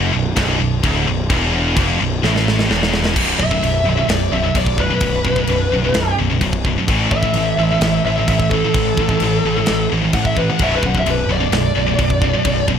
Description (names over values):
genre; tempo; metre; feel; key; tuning
heavy metal; 129 BPM; 4/4; straight; B minor; A4 = 435 Hz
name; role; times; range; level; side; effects
heavy high-gain guitar; riff; 0.0-12.8 s; B1 to A3; -21 LUFS; left 13 dB; distortion
scooped high-gain guitar; riff; 0.0-12.8 s; B1 to A3; -21 LUFS; right 8 dB; distortion
fuzz picked electric bass; bass; 0.0-12.8 s; B0 to A1; -21 LUFS; equal; overdrive
tight metal drum kit; drums; 0.4-12.8 s; crash cymbal, kick drum, snare drum; -22 LUFS; equal; none
bluesy overdriven lead guitar; melody; 3.4-12.7 s; A4 to F#5; -20 LUFS; equal; distortion
room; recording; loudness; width
little or no reverb; none; -14 LUFS; side -8 dB against mid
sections
0.0-3.2 A section; 3.2-12.8 B section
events
drum fill 2.2-3.2; lead electric guitar solo 3.2-12.8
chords
0.0 Bm; 3.2 B5; 6.9 A5; 10.6 Bm